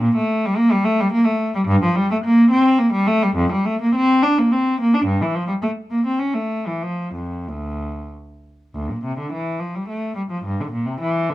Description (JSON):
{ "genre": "classical, baroque-style suite movement for unaccompanied cello", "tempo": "92-111 BPM", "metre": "3/4", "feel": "rubato", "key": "D minor", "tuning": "A4 = 440 Hz", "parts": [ { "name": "rich cello", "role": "solo", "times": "0.0-11.3 s", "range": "D2 to D4", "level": "-17 LUFS", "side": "equal", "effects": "none" } ], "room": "light reverb", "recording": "dark, warm production", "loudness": "-17 LUFS", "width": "side -16 dB against mid", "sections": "0.0-8.8 A section; 8.8-11.3 B section", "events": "none", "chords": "none" }